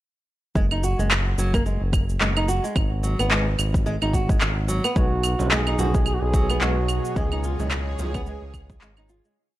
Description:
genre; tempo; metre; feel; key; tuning
organic downtempo; 109 BPM; 4/4; swing 58% on 16ths; unclear; A4 = 440 Hz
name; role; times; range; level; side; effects
flamenco guitar; arpeggios; 0.6-9.4 s; E#3 to F#4; -28 LUFS; right 1 dB; tape echo
smooth synth bass; bass; 0.6-9.2 s; F#1 to C#2; -24 LUFS; equal; none
electronic cabasa, claves and handclaps; drums; 0.6-9.3 s; none; -26 LUFS; right 1 dB; overdrive
electronic kick drum; drums; 0.6-8.8 s; none; -23 LUFS; equal; overdrive
mellow duduk; melody; 5.0-8.8 s; F#4 to G#4; -29 LUFS; right 2 dB; tape echo
bowed-like drone; sustained chords; 5.8-9.4 s; B2 to D#5; -33 LUFS; right 1 dB; built-in reverb, sidechain pumping
frame drum; percussion; 5.4-8.1 s; none; -32 LUFS; right 3 dB; none
room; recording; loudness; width
little or no reverb; dry, gritty hardware recording; -20 LUFS; side -15 dB against mid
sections
0.6-9.4 groove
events
fade-out 6.4-9.4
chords
0.6 N.C.; 2.8 G#7(no3); 5.0 B6; 7.2 C#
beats
| 0.56 1.11 1.66 2.21 | 2.76 3.31 3.86 4.41 | 4.96 5.51 6.06 6.61 | 7.16 7.71 8.26 8.81

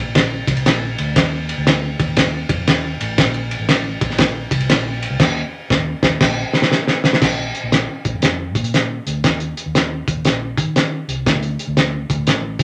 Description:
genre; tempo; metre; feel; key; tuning
uptempo 1960s-style soul; 119 BPM; 4/4; swing 65% on 8ths; Bb major; A4 = 440 Hz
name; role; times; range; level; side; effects
vintage muted fingered electric bass; bass; 0.0-12.6 s; A1 to Eb3; -26 LUFS; equal; none
cloth-damped thuddy drum kit; drums; 0.2-12.6 s; crash cymbal, hi-hat, kick drum, ride cymbal, snare drum; -18 LUFS; equal; none
room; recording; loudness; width
moderate small room reverb, RT60 0.5 s; none; -18 LUFS; mono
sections
0.0-7.2 A section; 7.2-12.6 B section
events
band accent 5.2-7.2; drum fill 6.2-7.2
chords
none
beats
0.15 0.66 | 1.16 1.67 2.17 2.68 | 3.18 3.69 4.19 4.70 | 5.20 5.71 6.21 6.71 | 7.22 7.72 8.23 8.73 | 9.24 9.75 10.25 10.76 | 11.26 11.77 12.27

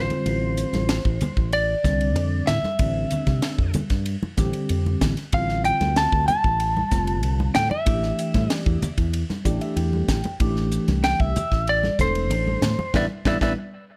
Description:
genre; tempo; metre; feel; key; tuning
electric jazz fusion; 95 BPM; 4/4; straight; unclear; A4 = 440 Hz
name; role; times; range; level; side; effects
lightly driven lead guitar; melody; 0.0-13.5 s; B4 to A5; -27 LUFS; equal; none
tine electric piano; accompaniment; 0.0-13.5 s; D3 to G5; -30 LUFS; equal; phaser
fingered electric bass; bass; 0.0-13.5 s; E1 to C3; -27 LUFS; equal; none
crisp fusion drum kit; drums; 0.1-13.6 s; hi-hat, kick drum, ride cymbal, snare drum; -28 LUFS; equal; none
congas; percussion; 0.1-13.6 s; none; -31 LUFS; equal; none
room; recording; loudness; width
light reverb; none; -23 LUFS; mono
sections
0.0-14.0 A section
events
tine electric piano fill 9.1-10.4; band accent 12.9-14.0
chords
0.0 Dm9/A; 5.3 G9sus4/A; 7.9 A7sus4; 10.4 C69; 12.9 E5/A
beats
| 0.26 0.90 1.53 2.17 | 2.80 3.44 4.07 4.70 | 5.34 5.97 6.61 7.24 | 7.87 8.51 9.14 9.77 | 10.41 11.04 11.67 12.31 | 12.94

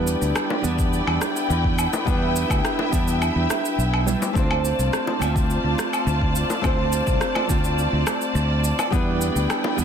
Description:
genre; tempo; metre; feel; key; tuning
sunset chillout; 105 BPM; 4/4; straight; D dorian; A4 = 440 Hz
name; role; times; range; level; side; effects
nylon-string guitar; accompaniment; 0.0-9.8 s; G3 to E5; -26 LUFS; right 1 dB; auto-pan, tape echo
dark symphonic string section; sustained chords; 0.0-9.8 s; E4 to A5; -26 LUFS; left 1 dB; none
overdriven fingered electric bass; bass; 0.0-9.8 s; B1 to E2; -23 LUFS; equal; none
electronic cabasa, rim click and woodblock; drums; 0.1-9.8 s; none; -27 LUFS; right 1 dB; soft clipping on snare
bongos; percussion; 0.5-9.8 s; none; -31 LUFS; left 3 dB; none
electronic kick drum; drums; 0.8-9.0 s; none; -24 LUFS; equal; none
room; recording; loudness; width
light reverb, small room reverb; dense, heavily limited modern master; -19 LUFS; side -8 dB against mid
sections
0.0-9.8 A section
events
none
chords
0.0 Em7; 4.4 Dm7; 8.9 Em7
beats
0.36 0.93 1.50 | 2.07 2.64 3.21 3.78 | 4.36 4.93 5.50 6.07 | 6.64 7.21 7.78 8.36 | 8.93 9.50

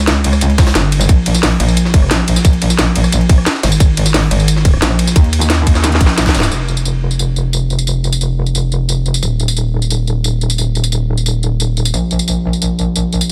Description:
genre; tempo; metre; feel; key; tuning
dark technical drum and bass; 177 BPM; 4/4; straight; unclear; A4 = 440 Hz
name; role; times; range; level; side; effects
metallic wobble bass; bass; 0.0-13.3 s; Eb1 to Eb2; -16 LUFS; equal; distortion, chorus, overdrive
drum and bass drum kit; drums; 0.1-13.3 s; hi-hat, ride cymbal, rim click, snare drum, tambourine; -20 LUFS; equal; none
jungle sampler-style drum kit; drums; 0.1-6.5 s; hi-hat, snare drum; -26 LUFS; equal; none
electronic kick drum; drums; 0.6-6.3 s; none; -12 LUFS; equal; none
room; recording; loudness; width
little or no reverb; dense, heavily limited modern master; -14 LUFS; mono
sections
0.0-6.5 A section; 6.5-13.3 B section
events
drop 0.0-6.5; drum fill 5.8-6.5; band accent 6.4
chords
none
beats
0.07 0.41 0.75 | 1.09 1.43 1.77 2.11 | 2.45 2.79 3.12 3.46 | 3.80 4.14 4.48 4.82 | 5.16 5.50 5.84 6.18 | 6.51 6.85 7.19 7.53 | 7.87 8.21 8.55 8.89 | 9.23 9.57 9.90 10.24 | 10.58 10.92 11.26 11.60 | 11.94 12.28 12.62 12.96 | 13.29

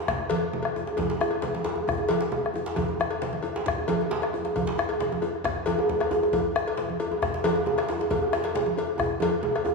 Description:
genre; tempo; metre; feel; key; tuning
west african traditional, West African drum ensemble; 135 BPM; 4/4; straight; none; none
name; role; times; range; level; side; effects
bombo; percussion; 0.1-9.7 s; none; -31 LUFS; left 4 dB; none
congas; percussion; 0.1-9.5 s; none; -33 LUFS; right 7 dB; none
djembe; percussion; 0.1-9.7 s; none; -34 LUFS; left 5 dB; none
djembe; percussion; 0.1-9.7 s; none; -28 LUFS; right 3 dB; none
cowbell; percussion; 0.3-9.7 s; none; -30 LUFS; left 7 dB; none
room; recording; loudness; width
wet concert hall reverb, RT60 2.1 s; recorded in a church or concert hall, studio ambience; -24 LUFS; side -3 dB against mid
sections
0.0-9.7 A section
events
drum fill 9.0-9.7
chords
none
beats
| 0.08 0.53 0.98 1.43 | 1.88 2.32 2.77 3.22 | 3.66 4.11 4.55 5.00 | 5.45 5.89 6.33 6.78 | 7.22 7.67 8.11 8.55 | 8.99 9.44

